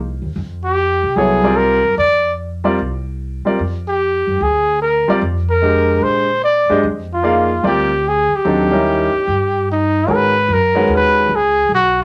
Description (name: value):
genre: modal jazz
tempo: 148 BPM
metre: 4/4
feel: swing 67% on 8ths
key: unclear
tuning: A4 = 440 Hz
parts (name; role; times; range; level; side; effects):
- upright bass; bass; 0.0-12.0 s; B1 to C3; -25 LUFS; equal; none
- warm trumpet; melody; 0.6-12.0 s; Eb4 to D5; -17 LUFS; equal; none
- clear concert grand piano; accompaniment; 1.2-11.3 s; D3 to F5; -19 LUFS; equal; none
room: moderate club reverb, RT60 0.5 s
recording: none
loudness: -16 LUFS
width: mono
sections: 0.0-10.1 A section; 10.1-12.0 B section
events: none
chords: 0.0 Fsus2; 3.6 Bb; 8.5 Eb7b9; 10.1 G#m9